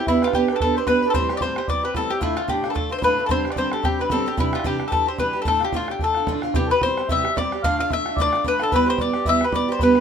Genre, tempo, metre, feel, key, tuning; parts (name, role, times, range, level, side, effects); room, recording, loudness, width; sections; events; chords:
celtic folk, Celtic reel; 222 BPM; 4/4; swing 57% on 8ths; D dorian; A4 = 440 Hz
bowl-back mandolin; melody; 0.0-10.0 s; E4 to F5; -23 LUFS; left 4 dB
mellow accordion; second line; 0.0-10.0 s; E4 to F5; -27 LUFS; left 2 dB
picked acoustic archtop guitar; accompaniment; 0.0-10.0 s; D2 to B4; -23 LUFS; right 4 dB
bodhran; percussion; 0.1-10.0 s; -27 LUFS; right 2 dB
moderate small room ambience, RT60 0.5 s; minimal, uncompressed stereo recording; -19 LUFS; side -7 dB against mid
0.0-6.5 A section; 6.5-10.0 B section
0.1 G/B; 1.1 Am7; 2.2 Dm; 3.3 Gsus4; 4.4 Cadd9; 5.5 Dm; 6.5 C; 7.6 Dm; 8.7 Em